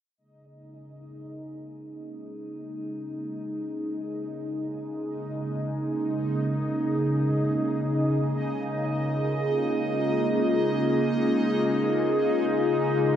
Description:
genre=ambient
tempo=free time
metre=none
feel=none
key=unclear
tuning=A4 = 442 Hz
part: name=phased analog pad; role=sustained chords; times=0.2-13.2 s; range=Db3 to Ab4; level=-25 LUFS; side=equal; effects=phaser, chorus
part: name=bubbling stepped-filter texture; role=texture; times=0.2-13.2 s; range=Eb4 to Eb5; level=-33 LUFS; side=right 1 dB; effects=chorus, built-in reverb, shimmer reverb
room=wet plate reverb, RT60 2.6 s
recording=none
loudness=-24 LUFS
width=side -9 dB against mid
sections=0.2-13.2 A section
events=fade-in on analog synth pad 0.2-13.2; fade-in on synth texture 0.2-13.2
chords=0.2 Eb7sus4; 8.9 Bbm7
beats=free time

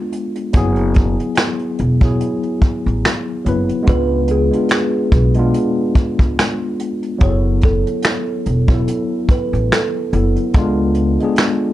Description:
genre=lo-fi hip hop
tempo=72 BPM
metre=4/4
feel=swing 56% on 16ths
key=F# minor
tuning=A4 = 440 Hz
part: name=mellow tine electric piano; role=accompaniment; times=0.0-11.7 s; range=F#3 to B4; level=-19 LUFS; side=left 2 dB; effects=medium stereo tremolo, cassette tape, low-pass filter
part: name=vintage brush drum kit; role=drums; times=0.1-11.6 s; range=finger snaps, hi-hat, kick drum, snare drum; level=-15 LUFS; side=equal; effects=none
part: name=upright bass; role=bass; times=0.5-11.2 s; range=E1 to C#2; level=-17 LUFS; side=equal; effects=none
part: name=kalimba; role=melody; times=3.9-10.1 s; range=G#4 to C#5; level=-23 LUFS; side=right 3 dB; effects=low-pass filter, analog delay
room=light reverb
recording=dark, warm production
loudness=-14 LUFS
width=side -14 dB against mid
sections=0.0-11.7 A section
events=none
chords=0.0 C#7b9 (rootless); 0.5 F#7sus2; 3.9 C#7b9; 7.2 F#m7; 10.5 C#7b9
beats=| 0.54 1.37 2.21 3.04 | 3.87 4.71 5.54 6.37 | 7.21 8.04 8.87 9.71 | 10.54 11.37

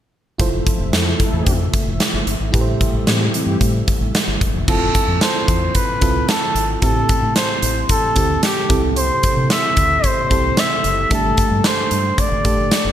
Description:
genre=1980s-style pop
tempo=112 BPM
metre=4/4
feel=straight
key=unclear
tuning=A4 = 440 Hz
part: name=FM electric piano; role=accompaniment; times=0.4-12.9 s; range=G2 to C5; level=-24 LUFS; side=right 3 dB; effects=chorus
part: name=brassy analog pad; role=sustained chords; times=0.4-4.7 s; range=C3 to E5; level=-27 LUFS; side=equal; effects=chorus
part: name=deep dub fingered electric bass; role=bass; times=0.4-12.9 s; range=E1 to C3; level=-21 LUFS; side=equal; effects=none
part: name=big rock drum kit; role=drums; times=0.4-12.8 s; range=crash cymbal, hi-hat, kick drum, snare drum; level=-18 LUFS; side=equal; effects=none
part: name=mellow synth brass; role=stabs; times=0.9-3.6 s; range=E3 to A4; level=-26 LUFS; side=left 2 dB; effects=chorus
part: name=warm flugelhorn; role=melody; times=4.7-12.9 s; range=G4 to E5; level=-19 LUFS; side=left 1 dB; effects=digital delay
room=moderate lush hall reverb, RT60 1.6 s, small room ambience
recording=bright 1980s-style digital production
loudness=-15 LUFS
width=side -10 dB against mid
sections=0.4-4.7 A section; 4.7-12.9 B section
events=none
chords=0.4 Fmaj7; 2.5 Am7; 4.4 Fmaj7; 6.8 Am7; 8.7 C6; 11.1 Gsus2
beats=| 0.39 0.93 1.47 2.00 | 2.54 3.07 3.61 4.14 | 4.68 5.21 5.75 6.29 | 6.82 7.36 7.89 8.43 | 8.96 9.50 10.04 10.57 | 11.11 11.64 12.18 12.71

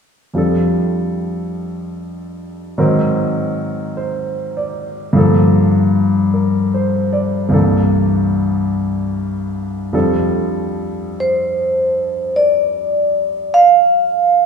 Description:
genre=jazz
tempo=50 BPM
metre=4/4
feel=swing 66% on 8ths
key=F major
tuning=A4 = 440 Hz
part: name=warm grand piano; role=accompaniment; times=0.3-14.5 s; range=C2 to D5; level=-15 LUFS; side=left 1 dB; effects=none
part: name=vibraphone with soft mallets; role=melody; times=11.2-14.5 s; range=C5 to F5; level=-12 LUFS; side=right 2 dB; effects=none
room=wet recital hall reverb, RT60 1.6 s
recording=recorded in a church or concert hall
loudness=-14 LUFS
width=side -6 dB against mid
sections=0.4-9.9 A section; 9.9-14.5 B section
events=none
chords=0.4 F6; 2.8 Ab9; 5.2 Gm7; 7.5 C13; 9.9 F6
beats=| 0.36 1.57 2.77 3.97 | 5.15 6.34 7.54 8.74 | 9.94 11.15 12.35 13.55

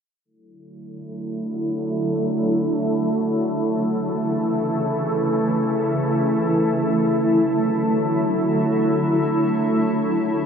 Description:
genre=hip hop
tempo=free time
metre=none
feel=none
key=unclear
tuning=A4 = 441 Hz
part: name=shimmering ambient pad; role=sustained chords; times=1.0-10.5 s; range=C#3 to A4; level=-19 LUFS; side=equal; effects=chorus, built-in reverb, low-pass filter
room=wet cathedral reverb, RT60 6.3 s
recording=dreamy mix soaked in reverb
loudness=-19 LUFS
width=side -7 dB against mid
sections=0.2-10.5 A section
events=filter sweep on ambient pad 0.2-10.5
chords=0.2 Dadd9; 3.5 A; 6.7 Dadd9; 9.9 A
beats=free time

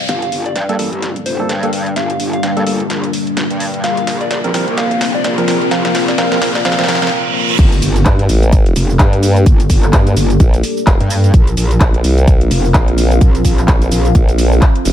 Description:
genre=bass house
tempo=128 BPM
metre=4/4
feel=swing 58% on 16ths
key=G minor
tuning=A4 = 440 Hz
part: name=soft synth bell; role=melody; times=0.0-7.1 s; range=C5 to F5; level=-21 LUFS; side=left 1 dB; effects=chorus, ping-pong delay
part: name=deep dark ambient pad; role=sustained chords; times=0.0-14.9 s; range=G3 to F5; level=-20 LUFS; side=left 2 dB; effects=chorus, built-in reverb, sidechain pumping
part: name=riser, reverse cymbal and impact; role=sound effects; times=0.0-9.5 s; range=none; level=-23 LUFS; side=right 1 dB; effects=none
part: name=metallic wobble bass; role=bass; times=0.1-14.1 s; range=F1 to G2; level=-17 LUFS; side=equal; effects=chorus, tube saturation, sidechain pumping, high-pass filter
part: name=house drum kit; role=drums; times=0.1-14.9 s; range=crash cymbal, handclaps, hi-hat, shaker, snare drum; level=-20 LUFS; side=equal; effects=high-pass filter on perc, low-pass filter on perc, high-pass filter on snare, low-pass filter on snare, high-pass filter on hats, low-pass filter on hats, high-pass filter on cymbals, low-pass filter on cymbals
part: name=percussive organ stab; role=stabs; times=0.7-7.1 s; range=F3 to Bb4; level=-20 LUFS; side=right 2 dB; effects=chorus, sidechain pumping, ping-pong delay
part: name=electronic kick drum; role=drums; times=7.6-14.7 s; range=none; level=-10 LUFS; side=equal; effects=none
part: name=formant-sweep wobble bass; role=bass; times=8.1-14.9 s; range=F1 to G2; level=-12 LUFS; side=equal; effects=chorus, overdrive, sidechain pumping
room=light reverb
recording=none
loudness=-11 LUFS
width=side -11 dB against mid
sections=0.1-7.6 A section; 7.6-14.9 B section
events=build-up 0.1-7.6; drum fill 0.1-7.1; riser 0.1-7.1; reverse cymbal 6.7-7.6; drop 7.6-14.9; impact 7.6-9.5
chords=0.1 Gmadd9; 3.8 Bbsus2; 7.6 Gmadd9; 11.3 Bbsus2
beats=| 0.09 0.56 1.02 1.49 | 1.96 2.43 2.90 3.37 | 3.84 4.31 4.78 5.24 | 5.71 6.18 6.65 7.12 | 7.59 8.06 8.53 8.99 | 9.46 9.93 10.40 10.87 | 11.34 11.81 12.28 12.74 | 13.21 13.68 14.15 14.62

